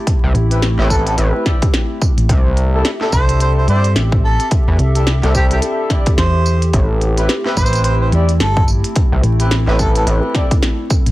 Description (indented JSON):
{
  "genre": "glitch hop",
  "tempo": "108 BPM",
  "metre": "4/4",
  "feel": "swing 59% on 16ths",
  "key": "A minor",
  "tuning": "A4 = 440 Hz",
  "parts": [
    { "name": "warbly tape-like pad", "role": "sustained chords", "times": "0.0-11.1 s", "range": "A3 to E5", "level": "-24 LUFS", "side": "left 1 dB", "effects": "chorus, built-in reverb, sidechain pumping" },
    { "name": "electronic kick drum", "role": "drums", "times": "0.1-11.0 s", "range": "none", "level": "-15 LUFS", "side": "equal", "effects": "small room reverb" },
    { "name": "glitchy drum kit", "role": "drums", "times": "0.1-11.1 s", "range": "hi-hat, snare drum, tambourine", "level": "-21 LUFS", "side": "equal", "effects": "small room reverb" },
    { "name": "gritty driven synth bass", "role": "bass", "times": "0.2-10.2 s", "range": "A1 to E2", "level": "-15 LUFS", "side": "equal", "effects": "tube saturation" },
    { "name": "hollow-body short-scale fingered electric bass", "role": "bass", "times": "0.3-11.1 s", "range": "G1 to G2", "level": "-14 LUFS", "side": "equal", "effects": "tube saturation" },
    { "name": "mellow horn section", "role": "stabs", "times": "0.5-10.5 s", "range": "C4 to D5", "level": "-22 LUFS", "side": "left 1 dB", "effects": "sidechain pumping, analog delay" },
    { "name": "mellow harmonica", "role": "melody", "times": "0.9-10.0 s", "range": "G4 to C5", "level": "-22 LUFS", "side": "right 2 dB", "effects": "analog delay" }
  ],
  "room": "little or no reverb",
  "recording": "dry, gritty hardware recording, transformer saturation, vinyl crackle",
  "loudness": "-12 LUFS",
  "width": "side -17 dB against mid",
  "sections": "0.0-11.1 A section",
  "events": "kick drops out 6.2-6.7",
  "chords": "0.0 Am7; 2.3 C6; 6.7 Am7"
}